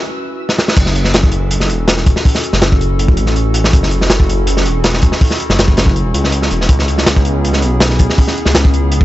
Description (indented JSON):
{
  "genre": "drum and bass, jungle",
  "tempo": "162 BPM",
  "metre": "4/4",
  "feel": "straight",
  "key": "F# minor",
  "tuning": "A4 = 438 Hz",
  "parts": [
    { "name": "warbly tape-like pad", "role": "sustained chords", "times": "0.0-9.0 s", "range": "B3 to B4", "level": "-21 LUFS", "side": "equal", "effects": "chorus, built-in reverb" },
    { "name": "dark detuned saw bass", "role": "bass", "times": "0.0-9.0 s", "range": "E1 to C#2", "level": "-15 LUFS", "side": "equal", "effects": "high-pass filter" },
    { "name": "crunchy breakbeat drum kit", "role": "drums", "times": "0.5-9.0 s", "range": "crash cymbal, hi-hat, kick drum, snare drum", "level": "-12 LUFS", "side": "equal", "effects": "none" }
  ],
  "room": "studio reverb",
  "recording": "nothing above 7.9 kHz",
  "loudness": "-10 LUFS",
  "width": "side -15 dB against mid",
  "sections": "0.8-9.0 A section",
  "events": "break 0.0-0.8; drum fill 0.5; drop 0.8-9.0",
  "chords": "0.0 C#m7; 0.8 F#m7; 6.7 C#m7"
}